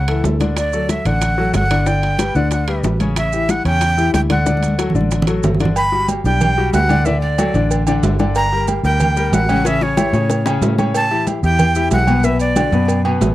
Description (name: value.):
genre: latin, salsa.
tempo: 185 BPM.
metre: 4/4.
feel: straight.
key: D major.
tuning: A4 = 441 Hz.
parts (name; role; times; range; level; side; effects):
breathy bright jazz flute; melody; 0.0-13.0 s; C#5 to B5; -19 LUFS; right 1 dB; none.
clear concert grand piano; accompaniment; 0.0-13.3 s; B2 to D5; -20 LUFS; left 4 dB; none.
vintage muted fingered electric bass; bass; 0.0-13.3 s; G1 to A2; -18 LUFS; right 1 dB; none.
congas; percussion; 0.1-13.3 s; none; -22 LUFS; equal; none.
timbales and agogo bells; percussion; 0.1-13.3 s; none; -24 LUFS; right 5 dB; none.
bongos and cowbell; percussion; 0.2-13.3 s; none; -25 LUFS; left 3 dB; none.
maracas; percussion; 0.2-13.3 s; none; -32 LUFS; right 17 dB; none.
room: light reverb.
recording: dry, close 1970s-style studio recording.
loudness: -14 LUFS.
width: side -15 dB against mid.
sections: 0.0-5.8 A section; 5.8-13.3 B section.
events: drum fill 4.5-5.8, 9.7-10.9.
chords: 0.0 A; 0.6 D; 1.9 G; 3.2 A7; 4.5 D; 5.8 Gmaj7; 7.1 D; 8.4 Gm; 9.7 A7; 12.2 Bm7.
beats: 0.24 | 0.57 0.89 1.22 1.54 | 1.87 2.19 2.52 2.84 | 3.17 3.49 3.82 4.14 | 4.47 4.79 5.12 5.44 | 5.76 6.09 6.41 6.74 | 7.06 7.38 7.71 8.03 | 8.36 8.68 9.00 9.33 | 9.65 9.97 10.30 10.62 | 10.95 11.27 11.59 11.92 | 12.24 12.56 12.89 13.21.